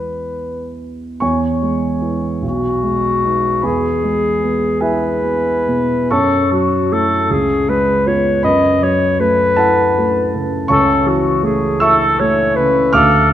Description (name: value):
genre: classical, romantic duo for clarinet and grand piano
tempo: 42-55 BPM (dotted quarters)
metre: 6/8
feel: rubato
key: E major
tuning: A4 = 440 Hz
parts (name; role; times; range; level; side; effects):
- warm clarinet; melody; 0.0-13.3 s; F#4 to D#5; -16 LUFS; left 2 dB; none
- dark grand piano; accompaniment; 0.0-13.3 s; B1 to F6; -16 LUFS; right 1 dB; none
room: wet scoring stage reverb, RT60 1.6 s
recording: none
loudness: -13 LUFS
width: side -11 dB against mid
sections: 0.0-1.2 A section; 1.2-13.3 B section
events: none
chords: 0.0 E; 2.4 B69; 3.6 E; 6.1 F#m7; 7.3 C#7; 8.4 F#m7; 10.7 A/C#